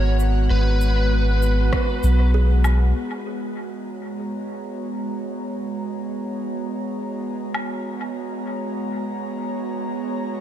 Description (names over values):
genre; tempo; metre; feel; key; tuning
ambient dub; 98 BPM; 4/4; swing 59% on 16ths; G# minor; A4 = 439 Hz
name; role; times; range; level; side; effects
overdriven slide guitar; melody; 0.0-2.3 s; B4 to C#5; -29 LUFS; equal; dub echo
airy breathy pad; sustained chords; 0.0-10.4 s; G#3 to A#5; -26 LUFS; right 1 dB; chorus
soft dub sub bass; bass; 0.0-2.9 s; G#1 to B1; -17 LUFS; equal; none
electronic cabasa, rim click and woodblock; drums; 0.2-2.8, 7.5-7.7 s; none; -33 LUFS; equal; low-pass filter on perc, low-pass filter on snare, low-pass filter on room, dub echo
electronic kick drum; drums; 1.7-1.9 s; none; -24 LUFS; equal; overdrive
kalimba; arpeggios; 2.3-3.1 s; G#4; -38 LUFS; right 3 dB; analog delay
room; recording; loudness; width
light reverb; none; -21 LUFS; side -11 dB against mid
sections
0.0-3.0 A section; 3.0-10.4 B section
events
none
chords
0.0 G#m9; 3.0 G#m11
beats
| 0.51 1.12 1.73 2.34 | 2.96 3.57 4.18 4.79 | 5.40 6.02 6.63 7.24 | 7.85 8.46 9.08 9.69 | 10.30